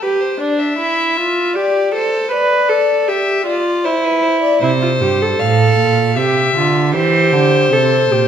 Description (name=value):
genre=classical, baroque-style fugue for string quartet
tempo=78 BPM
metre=3/4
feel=straight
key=unclear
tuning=A4 = 440 Hz
part: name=rich violin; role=second line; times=0.0-8.3 s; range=B4 to F5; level=-17 LUFS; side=left 5 dB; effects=none
part: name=warm viola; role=accompaniment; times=0.0-8.3 s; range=D4 to B4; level=-16 LUFS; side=right 2 dB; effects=none
part: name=rich cello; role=bass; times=4.6-8.3 s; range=G2 to E3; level=-16 LUFS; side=right 5 dB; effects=none
room=wet recital hall reverb, RT60 1.5 s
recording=none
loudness=-12 LUFS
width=side -8 dB against mid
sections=0.0-8.3 A section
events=none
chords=0.0 C (rootless); 1.6 G5; 2.3 G7; 3.8 C/E; 4.6 F; 6.2 C; 6.9 C7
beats=| 0.02 0.78 1.55 | 2.32 3.08 3.85 | 4.62 5.40 6.17 | 6.95 7.72